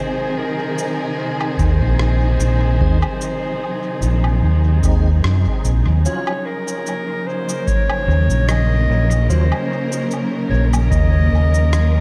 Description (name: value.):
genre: ambient dub.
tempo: 74 BPM.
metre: 4/4.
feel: swing 54% on 16ths.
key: Eb dorian.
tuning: A4 = 440 Hz.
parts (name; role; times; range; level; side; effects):
clear clarinet; melody; 0.0-12.0 s; Bb4 to Eb5; -27 LUFS; equal; dub echo.
rich studio string section; sustained chords; 0.0-12.0 s; C3 to Bb4; -26 LUFS; equal; vintage 12-bit sampler grit.
electronic cabasa, woodblock and rim click; drums; 0.8-11.9 s; none; -33 LUFS; equal; dub echo.
overdriven fingered electric bass; bass; 1.6-12.0 s; Bb1 to Gb2; -17 LUFS; equal; tube saturation.
electronic kick drum; drums; 1.6-11.1 s; none; -24 LUFS; equal; none.
tonewheel organ; stabs; 2.8-9.5 s; Gb3 to F4; -35 LUFS; equal; none.
room: light reverb.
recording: none.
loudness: -18 LUFS.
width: mono.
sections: 0.0-6.1 A section; 6.1-12.0 B section.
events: none.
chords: 0.0 Ab; 6.1 Ebm7.